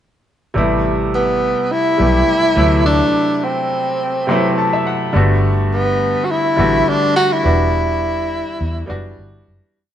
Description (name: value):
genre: lush 1970s-style soul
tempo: 104 BPM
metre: 4/4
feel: swing 54% on 16ths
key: E minor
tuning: A4 = 440 Hz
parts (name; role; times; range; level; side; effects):
- clear baby grand piano; accompaniment; 0.5-9.8 s; C3 to C6; -19 LUFS; equal; none
- vintage muted fingered electric bass; bass; 0.6-9.6 s; E1 to E2; -18 LUFS; equal; none
- breathy tenor saxophone; melody; 1.1-9.2 s; B3 to F#4; -16 LUFS; equal; none
room: wet stone room reverb, RT60 1.4 s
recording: band playing live in one room, nothing above 10.8 kHz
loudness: -14 LUFS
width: side -10 dB against mid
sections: 0.6-9.8 A section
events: grand piano fill 4.0-5.1; fade-out 7.4-9.8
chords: 0.6 Am9; 2.6 D13; 5.1 Gmaj9; 7.4 Em9